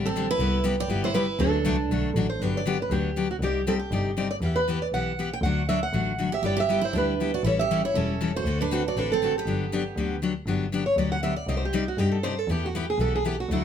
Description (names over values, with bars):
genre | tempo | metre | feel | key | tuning
acoustic string swing (jazz manouche) | 238 BPM | 4/4 | swing 56% on 8ths | G major | A4 = 440 Hz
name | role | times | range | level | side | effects
picked steel-string acoustic guitar | accompaniment | 0.0-13.6 s | C3 to D5 | -28 LUFS | left 5 dB | none
warm double bass | bass | 0.0-13.6 s | E1 to G2 | -29 LUFS | equal | none
picked steel-string acoustic guitar | melody | 0.1-13.6 s | Eb4 to G5 | -28 LUFS | right 3 dB | none
picked steel-string acoustic guitar | second line | 0.1-2.1, 6.3-10.2 s | B3 to G4 | -32 LUFS | right 7 dB | none
room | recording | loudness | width
light reverb | none | -23 LUFS | side -8 dB against mid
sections
0.0-2.4 A section; 2.4-10.5 B section; 10.5-13.6 C section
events
steel-string acoustic guitar solo 10.5-13.6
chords
0.4 Cmaj7; 1.4 D; 2.4 Gmaj7; 3.4 Cmadd9; 4.4 Em; 5.4 D; 6.4 G6; 7.4 A7; 8.5 D7; 9.5 Gmaj7; 11.5 Cmadd9; 12.5 Em